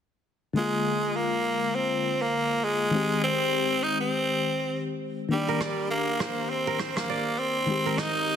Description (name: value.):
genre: afrobeats.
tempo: 101 BPM.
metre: 4/4.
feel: swing 58% on 16ths.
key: unclear.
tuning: A4 = 440 Hz.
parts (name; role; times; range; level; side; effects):
FM electric piano with tremolo; accompaniment; 0.5-8.4 s; D3 to G4; -30 LUFS; left 4 dB; none.
growling tenor saxophone; melody; 0.6-8.4 s; G3 to Eb4; -26 LUFS; right 1 dB; none.
kora; riff; 5.5-8.4 s; Bb4 to Eb5; -33 LUFS; right 9 dB; none.
rim click; drums; 5.6-8.1 s; none; -34 LUFS; right 2 dB; vintage 12-bit sampler grit.
room: light reverb.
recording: dense, heavily limited modern master.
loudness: -24 LUFS.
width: side -8 dB against mid.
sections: 0.6-8.4 A section.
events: none.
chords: 0.6 Bb7; 2.9 Abmaj7; 5.3 Ebmaj7; 7.7 Abmaj7.